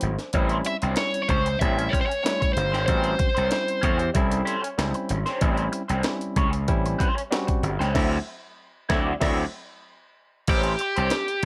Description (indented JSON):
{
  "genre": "funk",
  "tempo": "95 BPM",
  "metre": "4/4",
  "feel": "straight",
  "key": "unclear",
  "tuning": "A4 = 440 Hz",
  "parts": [
    { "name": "barky tine electric piano", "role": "stabs", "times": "0.0-9.4 s", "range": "F#3 to C#5", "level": "-33 LUFS", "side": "equal", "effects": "plate reverb" },
    { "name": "gritty slap bass", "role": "bass", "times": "0.0-11.4 s", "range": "G1 to E2", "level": "-28 LUFS", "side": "equal", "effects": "overdrive" },
    { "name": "breakbeat sampler-style drum kit", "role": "drums", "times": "0.0-11.4 s", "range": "crash cymbal, hi-hat, kick drum, snare drum", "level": "-29 LUFS", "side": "equal", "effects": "none" },
    { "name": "crunchy overdriven guitar", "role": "accompaniment", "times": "0.3-11.2 s", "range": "C#4 to D5", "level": "-32 LUFS", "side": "equal", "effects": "wah, phaser, plate reverb" },
    { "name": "nasal lead guitar with a parked wah", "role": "melody", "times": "0.7-4.1, 10.5-11.4 s", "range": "G4 to E5", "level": "-28 LUFS", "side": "equal", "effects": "overdrive, plate reverb" },
    { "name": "clear horn section", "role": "second line", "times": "7.9-9.4 s", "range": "C4 to E5", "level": "-36 LUFS", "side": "equal", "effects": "plate reverb" }
  ],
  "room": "light reverb",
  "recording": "none",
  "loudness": "-24 LUFS",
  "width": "mono",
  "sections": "0.0-10.5 A section",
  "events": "break 0.0-0.3; tine electric piano fill 0.0-0.3, 3.5-5.4, 9.2-10.5; band accent 8.0-10.5",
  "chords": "0.3 A7#9; 8.0 D9; 10.5 A7#9",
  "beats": "| 0.34 0.97 1.61 2.24 | 2.88 3.51 4.15 4.78 | 5.42 6.05 6.68 7.32 | 7.95 8.59 9.22 9.86 | 10.49 11.12"
}